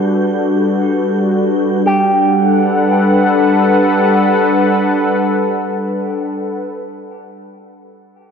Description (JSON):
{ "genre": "ambient", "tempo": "free time", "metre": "none", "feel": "none", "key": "G major", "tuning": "A4 = 440 Hz", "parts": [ { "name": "warm analog pad", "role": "sustained chords", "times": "0.0-6.8 s", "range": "G3 to F#5", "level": "-13 LUFS", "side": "left 1 dB", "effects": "chorus" }, { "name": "wind-like tuned noise texture", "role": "texture", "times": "0.0-1.9 s", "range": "G6", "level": "-35 LUFS", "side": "right 2 dB", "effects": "built-in reverb" }, { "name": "electric guitar with an envelope filter", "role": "arpeggios", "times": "1.9-6.2 s", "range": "G4", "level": "-20 LUFS", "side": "right 1 dB", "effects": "tape echo" } ], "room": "wet cathedral reverb, RT60 5.2 s", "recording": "nothing above 10.9 kHz", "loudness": "-12 LUFS", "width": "side -6 dB against mid", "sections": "0.0-1.9 A section; 1.9-6.0 B section", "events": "none", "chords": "0.0 Gmaj9", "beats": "free time" }